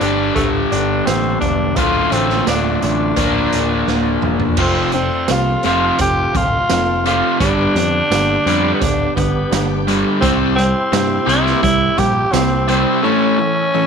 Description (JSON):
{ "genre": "classic rock", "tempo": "85 BPM", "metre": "4/4", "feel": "straight", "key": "unclear", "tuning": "A4 = 442 Hz", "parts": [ { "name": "raspy tenor saxophone", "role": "melody", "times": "0.0-13.9 s", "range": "A3 to G4", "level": "-18 LUFS", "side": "equal", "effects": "slapback echo" }, { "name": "picked steel-string acoustic guitar", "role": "accompaniment", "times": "0.0-13.9 s", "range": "G2 to Bb4", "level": "-27 LUFS", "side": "left 12 dB", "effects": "none" }, { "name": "crunchy overdriven guitar", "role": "riff", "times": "0.0-13.9 s", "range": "D2 to Bb4", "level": "-18 LUFS", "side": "equal", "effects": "none" }, { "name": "growling picked electric bass", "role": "bass", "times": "0.0-12.8 s", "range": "D1 to G2", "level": "-22 LUFS", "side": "equal", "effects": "overdrive" }, { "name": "raw garage drum kit", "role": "drums", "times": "0.0-12.9 s", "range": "crash cymbal, hi-hat, kick drum, snare drum, tambourine, toms", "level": "-23 LUFS", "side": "right 4 dB", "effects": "none" }, { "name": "reed electric piano", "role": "accompaniment", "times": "4.6-13.9 s", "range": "B3 to A4", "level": "-27 LUFS", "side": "right 12 dB", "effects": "none" }, { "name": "tonewheel organ", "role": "sustained chords", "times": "4.6-13.9 s", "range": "A3 to A4", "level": "-28 LUFS", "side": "equal", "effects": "overdrive, chorus vibrato, slow rotary speaker" } ], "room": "light reverb, studio ambience", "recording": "1960s-style stereo with parts hard left and right", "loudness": "-13 LUFS", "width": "side -6 dB against mid", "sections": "0.0-4.6 A section; 4.6-13.9 B section", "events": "drum fill 3.9-4.6", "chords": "0.0 Gsus2; 1.8 Dm; 3.2 Bb/D; 4.6 F; 7.4 G; 10.2 C; 13.0 A" }